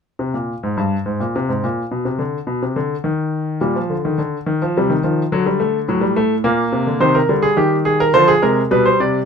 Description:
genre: classical, baroque-style 4-part fugue for grand piano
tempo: 106 BPM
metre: 3/4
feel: straight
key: C minor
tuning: A4 = 440 Hz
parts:
  - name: clear grand piano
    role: solo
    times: 0.2-9.3 s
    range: G2 to D5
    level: -15 LUFS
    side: equal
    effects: none
room: light reverb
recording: minimal, uncompressed stereo recording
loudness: -15 LUFS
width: side -6 dB against mid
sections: 0.2-9.3 A section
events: none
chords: 0.2 N.C.; 3.6 Gm/Bb (rootless); 4.8 Cmadd11; 5.3 D; 6.5 Bbadd9; 7.0 Cm; 8.1 Dm7b5; 8.7 G/B

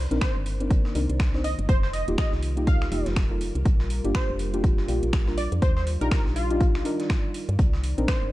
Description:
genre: deep house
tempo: 122 BPM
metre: 4/4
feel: swing 59% on 16ths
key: C minor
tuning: A4 = 440 Hz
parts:
  - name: dark analog pad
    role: sustained chords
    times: 0.0-8.3 s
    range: Eb3 to D5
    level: -37 LUFS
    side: equal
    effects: chorus, sidechain pumping
  - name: woody FM bass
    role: bass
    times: 0.0-8.3 s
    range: Eb1 to G2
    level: -27 LUFS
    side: equal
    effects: sidechain pumping
  - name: clear studio string section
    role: texture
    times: 0.0-8.3 s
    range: F4 to D5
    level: -53 LUFS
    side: equal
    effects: none
  - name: deep mellow chord stab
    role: stabs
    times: 0.1-8.3 s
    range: Bb3 to C5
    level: -30 LUFS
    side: equal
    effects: chorus, sidechain pumping, analog delay
  - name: house drum kit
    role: drums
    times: 0.1-8.2 s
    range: finger snaps, hi-hat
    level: -37 LUFS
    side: equal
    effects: vintage 12-bit sampler grit, studio reverb
  - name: plucky unison lead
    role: melody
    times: 0.2-8.2 s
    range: F4 to F5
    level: -32 LUFS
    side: equal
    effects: wide subtle chorus, analog delay
  - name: breakbeat sampler-style drum kit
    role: drums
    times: 0.2-8.2 s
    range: hi-hat, snare drum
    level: -42 LUFS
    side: equal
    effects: high-pass filter on hats, vintage 12-bit sampler grit, studio reverb, high-pass filter on snare, high-pass filter on room
  - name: electronic kick drum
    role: drums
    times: 0.2-8.2 s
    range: none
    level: -23 LUFS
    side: equal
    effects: vintage 12-bit sampler grit, studio reverb
room: digital ambience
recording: none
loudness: -22 LUFS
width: side -17 dB against mid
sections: 0.0-8.3 A section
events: none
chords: 0.0 Cm9; 1.7 F9sus4; 3.7 Bb6; 5.6 Ebmaj9; 7.6 Cm9

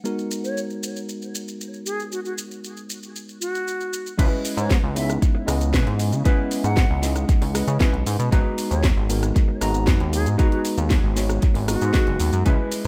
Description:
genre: nu-disco, nu disco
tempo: 116 BPM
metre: 4/4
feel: straight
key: C# dorian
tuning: A4 = 440 Hz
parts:
  - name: tine electric piano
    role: accompaniment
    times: 0.0-12.9 s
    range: G#3 to A#5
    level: -30 LUFS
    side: equal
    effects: sidechain pumping, tape echo
  - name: house drum kit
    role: drums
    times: 0.1-12.9 s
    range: crash cymbal, hi-hat, rim click, shaker, snare drum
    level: -32 LUFS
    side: equal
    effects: studio reverb, tape echo
  - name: mellow concert flute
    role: melody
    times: 0.4-12.9 s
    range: F#4 to F#5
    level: -34 LUFS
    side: equal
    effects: dub echo
  - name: mellow electric guitar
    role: riff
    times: 4.2-12.8 s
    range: C#4 to B4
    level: -33 LUFS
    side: equal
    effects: lush chorus, tape echo
  - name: chorused synth bass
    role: bass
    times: 4.2-12.9 s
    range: F#1 to C#3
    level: -25 LUFS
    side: equal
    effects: tube saturation, sidechain pumping
  - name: electronic kick drum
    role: drums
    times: 4.2-12.6 s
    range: none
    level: -21 LUFS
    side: equal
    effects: studio reverb
room: digital ambience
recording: echo-heavy mix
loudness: -22 LUFS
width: mono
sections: 0.0-4.2 A section; 4.2-12.9 B section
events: drop 4.2-12.9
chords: 0.0 G#m7; 4.2 C#m7; 8.3 G#m7

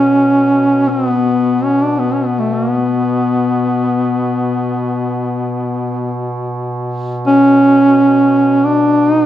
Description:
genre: caucasian folk, Caucasian lament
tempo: free time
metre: none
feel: none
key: B minor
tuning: A4 = 440 Hz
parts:
  - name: mellow duduk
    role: melody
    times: 0.0-9.3 s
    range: A3 to D4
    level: -12 LUFS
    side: equal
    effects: none
  - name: warm duduk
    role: drone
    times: 0.0-9.3 s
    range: B2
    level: -20 LUFS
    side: equal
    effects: none
room: light reverb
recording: minimal, uncompressed stereo recording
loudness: -12 LUFS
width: side -12 dB against mid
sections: 0.0-9.3 A section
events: none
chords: none

